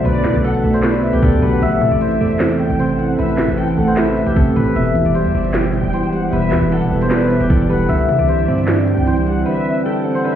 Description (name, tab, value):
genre	hip hop, trap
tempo	153 BPM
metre	4/4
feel	half-time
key	unclear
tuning	A4 = 441 Hz
part	steel-string zither	melody	0.0-10.4 s	G4 to E5	-21 LUFS	left 4 dB	low-pass filter
part	rich studio violin section	second line	0.0-10.4 s	D5 to G5	-26 LUFS	equal	ping-pong delay
part	soft electric-piano-like synth keys	accompaniment	0.0-10.4 s	A2 to B4	-18 LUFS	right 1 dB	chorus, low-pass filter
part	airy breathy pad	sustained chords	0.0-10.4 s	B2 to A4	-23 LUFS	right 2 dB	chorus, phaser
part	distorted 808-style bass	bass	0.0-9.4 s	D1 to C3	-20 LUFS	equal	distortion
part	trap drum kit	drums	0.1-9.4 s	handclaps, hi-hat, kick drum, snare drum	-19 LUFS	right 1 dB	none
room	light reverb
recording	heard muffled through a wall, stone room reverb, EQ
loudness	-14 LUFS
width	side -10 dB against mid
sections	0.0-10.4 A section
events	break 9.5-10.4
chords	0.0 Bm7; 1.6 Am; 4.8 Em; 7.9 Cadd9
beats	| 0.05 0.44 0.83 1.23 | 1.62 2.01 2.40 2.79 | 3.19 3.58 3.97 4.36 | 4.76 5.15 5.54 5.93 | 6.32 6.72 7.11 7.50 | 7.89 8.29 8.68 9.07 | 9.46 9.85 10.25